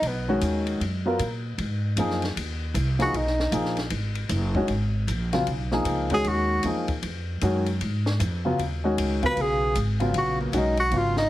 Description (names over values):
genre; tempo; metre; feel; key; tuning
modal jazz; 154 BPM; 4/4; swing 64% on 8ths; G# dorian; A4 = 440 Hz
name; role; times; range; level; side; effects
breathy tenor saxophone; melody; 0.0-0.4, 3.0-3.5, 6.1-6.7, 9.3-11.3 s; A#3 to B4; -25 LUFS; equal; none
upright bass; bass; 0.0-11.3 s; F#1 to A#2; -27 LUFS; equal; none
compact cocktail drum kit; drums; 0.0-11.2 s; hi-hat, kick drum, ride cymbal, snare drum; -34 LUFS; left 2 dB; none
warm baby grand piano; accompaniment; 0.3-11.1 s; C#3 to A#4; -26 LUFS; left 1 dB; none
room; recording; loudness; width
moderate studio reverb, RT60 0.7 s; heavily compressed radio sound; -23 LUFS; side -15 dB against mid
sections
0.0-11.3 A section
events
tenor saxophone solo 0.0-11.3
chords
0.0 Badd9; 1.6 G#m9; 4.7 Badd9/G#; 7.8 G#m9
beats
| 0.03 0.42 0.81 1.20 | 1.59 1.98 2.37 2.75 | 3.14 3.53 3.92 4.31 | 4.70 5.09 5.48 5.87 | 6.26 6.65 7.04 7.42 | 7.81 8.20 8.59 8.98 | 9.37 9.76 10.14 10.53 | 10.92